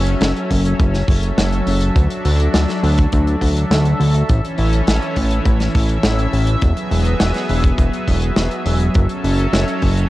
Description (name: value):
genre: synthwave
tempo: 103 BPM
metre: 4/4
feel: straight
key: F# minor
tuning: A4 = 440 Hz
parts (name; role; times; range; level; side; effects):
- lush unison pad; sustained chords; 0.0-10.1 s; E3 to E5; -21 LUFS; equal; chorus, sidechain pumping, cassette tape
- fat analog bass; bass; 0.0-10.1 s; E1 to D2; -16 LUFS; equal; none
- modern studio drum kit; drums; 0.1-10.1 s; hi-hat, snare drum; -22 LUFS; equal; cassette tape
- kick drum; drums; 0.5-9.9 s; none; -17 LUFS; equal; cassette tape
room: light reverb, studio reverb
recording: home recording on cassette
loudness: -14 LUFS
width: side -17 dB against mid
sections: 0.0-10.1 A section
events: none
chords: 0.0 F#m7; 2.0 Dadd9; 4.3 A; 6.6 Eadd9; 8.9 F#m7